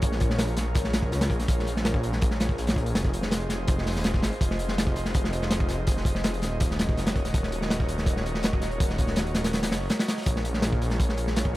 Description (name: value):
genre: drum and bass, jungle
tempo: 164 BPM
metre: 4/4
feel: straight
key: Bb minor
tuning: A4 = 439 Hz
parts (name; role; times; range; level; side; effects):
- airy breathy pad; sustained chords; 0.0-11.6 s; F4 to Eb5; -33 LUFS; equal; chorus
- detuned saw bass; bass; 0.0-11.6 s; Eb1 to Db2; -29 LUFS; equal; none
- crunchy breakbeat drum kit; drums; 0.0-11.6 s; hi-hat, kick drum, snare drum; -25 LUFS; equal; none
- crunchy breakbeat drum kit; drums; 0.0-11.6 s; hi-hat, snare drum; -42 LUFS; left 1 dB; none
room: little or no reverb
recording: none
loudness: -23 LUFS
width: side -17 dB against mid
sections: 0.0-10.3 A section; 10.3-11.6 A section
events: drop 0.0-10.3, 10.3-11.6; kick drops out 9.5-10.3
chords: 0.0 Bbm7; 3.0 Fm7; 6.6 Ebm7; 10.3 Bbm7